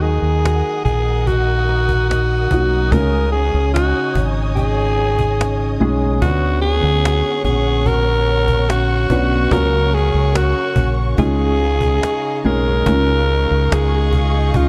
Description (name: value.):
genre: pop ballad.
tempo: 72 BPM.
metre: 4/4.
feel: straight.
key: unclear.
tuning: A4 = 441 Hz.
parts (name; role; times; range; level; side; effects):
raspy alto saxophone; melody; 0.0-14.7 s; E#4 to A#4; -22 LUFS; equal; none.
dark upright piano; accompaniment; 0.0-14.7 s; C#3 to G#4; -25 LUFS; equal; none.
warm studio string section; sustained chords; 0.0-14.7 s; B3 to D#6; -31 LUFS; equal; none.
picked steel-string acoustic guitar; arpeggios; 0.0-14.7 s; C#3 to B4; -29 LUFS; equal; none.
fingered electric bass; bass; 0.0-14.7 s; G#1 to D#2; -20 LUFS; equal; none.
cajon; drums; 0.5-14.7 s; none; -24 LUFS; equal; none.
room: light reverb, small room reverb.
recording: dark, warm production.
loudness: -17 LUFS.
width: mono.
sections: 0.0-12.9 A section; 12.9-14.7 B section.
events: none.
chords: 0.0 D#m; 2.9 C#sus2; 6.2 Bmadd9; 9.5 F#/C#; 11.2 C#add9.